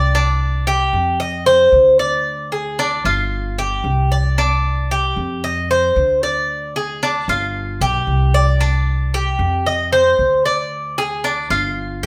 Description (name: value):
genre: latin, Cuban son and guajira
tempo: 114 BPM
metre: 4/4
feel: straight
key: C minor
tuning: A4 = 438 Hz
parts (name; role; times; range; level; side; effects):
- Cuban tres; arpeggios; 0.0-12.1 s; D4 to Eb5; -19 LUFS; equal; none
- upright bass; bass; 0.0-12.1 s; G1 to F2; -23 LUFS; equal; none
room: light reverb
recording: band playing live in one room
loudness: -17 LUFS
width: mono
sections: 0.0-12.1 A section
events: none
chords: 0.1 Csus2; 1.2 F5; 2.3 Ddim; 3.3 G5; 4.4 Csus2; 5.4 F5; 6.5 Ddim; 7.5 G7; 8.6 Csus2; 9.7 F5; 10.7 Ddim